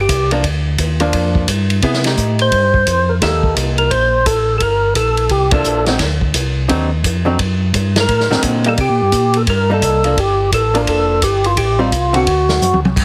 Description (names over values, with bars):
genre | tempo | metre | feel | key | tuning
soul jazz organ trio | 172 BPM | 4/4 | swing 63% on 8ths | G minor | A4 = 441 Hz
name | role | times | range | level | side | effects
percussive tonewheel organ | melody | 0.0-0.3, 2.4-5.9, 8.0-12.8 s | F4 to C5 | -18 LUFS | equal | slow rotary speaker, overdrive
mellow tonewheel organ | bass | 0.0-13.0 s | F1 to C3 | -20 LUFS | equal | overdrive, chorus vibrato, slow rotary speaker
vintage drum kit | drums | 0.1-13.0 s | crash cymbal, hi-hat, kick drum, ride cymbal, snare drum, toms | -21 LUFS | equal | none
archtop guitar, miked and amplified | accompaniment | 0.3-12.3 s | D3 to Ab4 | -22 LUFS | equal | none
room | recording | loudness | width
light reverb | heavily compressed radio sound, multiband compression | -15 LUFS | mono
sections
0.0-13.0 A section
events
band accent 5.5; drum fill 12.6-13.0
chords
0.0 Gm7; 1.8 Cm7; 4.6 Gm7; 6.0 D7b9; 8.8 Cm7; 10.2 Gm7; 11.6 Am7b5; 12.3 D7